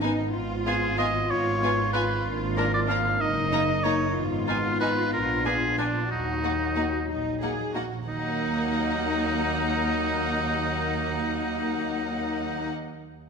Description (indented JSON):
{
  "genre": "cinematic, playful, whimsical film cue",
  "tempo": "62 BPM (dotted quarters)",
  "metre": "6/8",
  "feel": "straight",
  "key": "Eb minor",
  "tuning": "A4 = 441 Hz",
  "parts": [
    { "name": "rich chamber violin section", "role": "melody", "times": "0.0-12.7 s", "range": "Gb5 to Bb5", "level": "-36 LUFS", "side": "left 3 dB", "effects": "none" },
    { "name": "rich chamber violin section", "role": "second line", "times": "0.0-12.7 s", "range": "D4 to F4", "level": "-34 LUFS", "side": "left 2 dB", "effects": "none" },
    { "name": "rich studio viola section", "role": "accompaniment", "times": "0.0-12.7 s", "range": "Bb3 to Cb4", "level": "-34 LUFS", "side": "right 2 dB", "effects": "none" },
    { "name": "warm French horn section", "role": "sustained chords", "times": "0.0-12.7 s", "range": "Gb3 to F4", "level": "-32 LUFS", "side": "left 7 dB", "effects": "none" },
    { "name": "rich chamber double bass section", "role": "bass", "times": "0.0-12.7 s", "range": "Gb1 to Eb2", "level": "-32 LUFS", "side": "right 4 dB", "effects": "none" },
    { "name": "warm studio cello section", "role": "bass", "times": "0.0-12.7 s", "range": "Eb2 to Ab4", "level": "-33 LUFS", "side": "right 1 dB", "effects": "none" },
    { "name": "bright oboe", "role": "second line", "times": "0.7-12.7 s", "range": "D4 to F5", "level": "-28 LUFS", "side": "right 1 dB", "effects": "none" }
  ],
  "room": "moderate scoring stage reverb, RT60 1.7 s",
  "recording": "none",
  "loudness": "-24 LUFS",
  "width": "side -5 dB against mid",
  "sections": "0.0-8.1 A section; 8.1-11.9 B section",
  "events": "none",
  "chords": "0.3 Fdim/Ab; 2.3 Bb7/Ab; 3.2 Ebm/Gb; 4.2 Fm7b5/Ab; 5.1 Bb7b9; 6.1 Ebm"
}